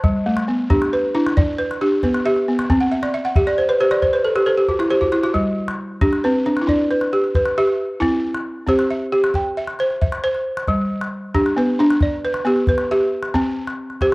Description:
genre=west african traditional, West African string and xylophone music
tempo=90 BPM (dotted quarters)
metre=12/8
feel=straight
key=G major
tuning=A4 = 441 Hz
part: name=balafon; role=arpeggios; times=0.0-14.1 s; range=G3 to A5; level=-18 LUFS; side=equal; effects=cassette tape
part: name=calabash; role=percussion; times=0.0-14.1 s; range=none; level=-22 LUFS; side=equal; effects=none
part: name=balafon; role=melody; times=0.3-14.1 s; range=A3 to E4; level=-21 LUFS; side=equal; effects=cassette tape
room=moderate spring reverb, RT60 1.8 s, small room reverb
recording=home recording on cassette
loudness=-16 LUFS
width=side -24 dB against mid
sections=0.0-14.1 A section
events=balafon fill 2.8-5.4; drum fill 5.0-5.4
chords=0.0 G; 2.7 C; 5.4 G; 8.0 C; 10.7 G; 13.3 C

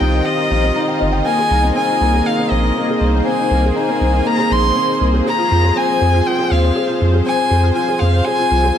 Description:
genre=piano and strings electronica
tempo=120 BPM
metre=4/4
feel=straight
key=unclear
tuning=A4 = 439 Hz
part: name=rich violin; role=melody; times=0.0-8.8 s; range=Eb5 to C6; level=-18 LUFS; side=left 2 dB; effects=digital delay
part: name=lush unison pad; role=sustained chords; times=0.0-8.8 s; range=Eb3 to Eb5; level=-22 LUFS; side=left 1 dB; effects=chorus
part: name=felt-muted upright piano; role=riff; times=0.0-8.8 s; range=Bb3 to G5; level=-19 LUFS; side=equal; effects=digital delay
part: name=warm sub bass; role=bass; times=0.0-8.7 s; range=G1 to F2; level=-16 LUFS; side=equal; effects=none
room=moderate echo chamber reverb, RT60 1.6 s, small room reverb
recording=none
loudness=-13 LUFS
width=side -9 dB against mid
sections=0.0-8.8 A section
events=none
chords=0.0 Cm; 1.3 Abadd9; 5.3 Fm

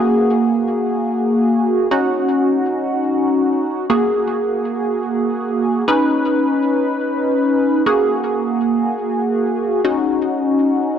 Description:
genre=pop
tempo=free time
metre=none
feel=none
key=unclear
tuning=A4 = 438 Hz
part: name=funky polysynth comp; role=solo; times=0.0-11.0 s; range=Bb3 to B4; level=-15 LUFS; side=equal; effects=chorus, phaser, tape echo
room=wet concert hall reverb, RT60 2.4 s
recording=dark, warm production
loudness=-15 LUFS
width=side -8 dB against mid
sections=0.0-11.0 A section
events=none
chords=0.0 Gbadd9/Bb; 1.9 Ebm7; 3.9 Gbadd9; 5.9 Badd9; 7.9 Gbadd9/Bb; 9.8 Ebm7

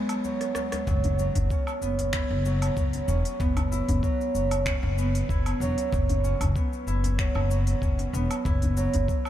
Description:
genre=organic downtempo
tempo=95 BPM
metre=4/4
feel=swing 54% on 16ths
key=unclear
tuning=A4 = 441 Hz
part: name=Celtic harp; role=arpeggios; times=0.0-9.3 s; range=F#3 to E4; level=-28 LUFS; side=right 1 dB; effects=analog delay
part: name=organic electronic drum kit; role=drums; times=0.1-9.3 s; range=finger snaps, hi-hat, rim click, shaker, woodblock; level=-36 LUFS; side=equal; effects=overdrive
part: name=djembe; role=percussion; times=0.2-9.1 s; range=none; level=-33 LUFS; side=left 1 dB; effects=none
part: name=upright bass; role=bass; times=0.9-9.0 s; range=E1 to F#1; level=-26 LUFS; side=equal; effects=tube saturation, sidechain pumping
part: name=electronic kick drum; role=drums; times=0.9-9.2 s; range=none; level=-28 LUFS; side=equal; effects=none
room=light reverb, small room ambience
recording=none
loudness=-23 LUFS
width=side -12 dB against mid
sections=0.9-9.3 A section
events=break 0.0-0.9; drum fill 0.4-0.9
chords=0.0 C#m7/F#; 0.9 F#5

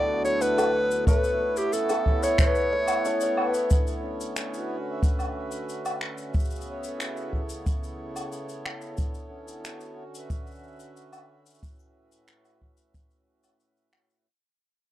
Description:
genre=folktronica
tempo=91 BPM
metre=4/4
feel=straight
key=D major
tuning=A4 = 442 Hz
part: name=clear clarinet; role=melody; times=0.0-3.3 s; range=G4 to D5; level=-26 LUFS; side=equal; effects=tape echo
part: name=hand-pumped harmonium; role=sustained chords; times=0.0-14.3 s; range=D2 to E5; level=-34 LUFS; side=equal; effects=none
part: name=cimbalom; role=arpeggios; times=0.0-8.6 s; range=D3 to B4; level=-31 LUFS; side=equal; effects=tape echo
part: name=music box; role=second line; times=0.2-3.4 s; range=A4 to F#5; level=-33 LUFS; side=left 2 dB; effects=tape echo
part: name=cabasa, woodblock and finger snaps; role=drums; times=0.3-14.2 s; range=none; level=-33 LUFS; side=left 1 dB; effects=none
part: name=kick drum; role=drums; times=1.1-13.1 s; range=none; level=-25 LUFS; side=equal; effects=none
room=little or no reverb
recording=dry, close 1970s-style studio recording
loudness=-24 LUFS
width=side -13 dB against mid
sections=0.0-3.7 A section; 3.7-14.3 B section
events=fade-out 3.7-14.3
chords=0.0 D; 1.1 Aadd9; 3.7 D; 6.3 F#m/C#; 9.0 D; 11.6 Aadd9

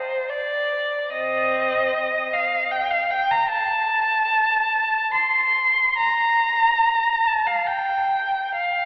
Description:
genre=classical, free, expressive piece for unaccompanied violin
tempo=66-78 BPM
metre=3/4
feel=rubato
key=C dorian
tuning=A4 = 440 Hz
part: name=rich violin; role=solo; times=0.0-8.9 s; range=C4 to C6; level=-18 LUFS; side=equal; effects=none
room=wet church reverb, RT60 3.3 s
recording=telephone sound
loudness=-18 LUFS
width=side -23 dB against mid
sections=0.0-8.9 A section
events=none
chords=none

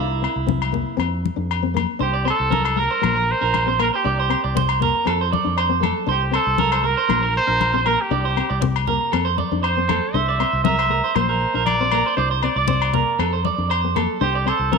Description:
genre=highlife guitar band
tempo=118 BPM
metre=4/4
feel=straight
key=C mixolydian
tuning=A4 = 440 Hz
part: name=nylon-string guitar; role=accompaniment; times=0.0-14.8 s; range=A3 to D4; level=-27 LUFS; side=left 13 dB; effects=none
part: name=clean electric guitar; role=arpeggios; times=0.0-14.8 s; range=E4 to D5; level=-22 LUFS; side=right 8 dB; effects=slapback echo
part: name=fingered electric bass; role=bass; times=0.0-14.8 s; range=Bb1 to F2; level=-24 LUFS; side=equal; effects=none
part: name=agogo bells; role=percussion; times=0.2-14.6 s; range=none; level=-28 LUFS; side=left 12 dB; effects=none
part: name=congas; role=percussion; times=0.5-14.8 s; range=none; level=-26 LUFS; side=left 10 dB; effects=none
part: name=clear trumpet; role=melody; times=2.0-14.8 s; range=G4 to E5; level=-23 LUFS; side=equal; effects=none
room=moderate echo chamber reverb, RT60 2.2 s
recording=1960s-style stereo with parts hard left and right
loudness=-17 LUFS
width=side -4 dB against mid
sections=0.0-2.0 A section; 2.0-14.8 B section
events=clean electric guitar solo 0.0-2.0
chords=0.0 C; 1.0 F5; 2.0 Csus2; 3.0 Bb; 4.0 Csus2; 5.1 F; 6.1 Csus2; 7.1 Bb; 8.1 Csus2; 9.1 F; 10.1 Cadd9; 11.2 Bb; 12.2 Csus2; 13.2 F; 14.2 Csus2

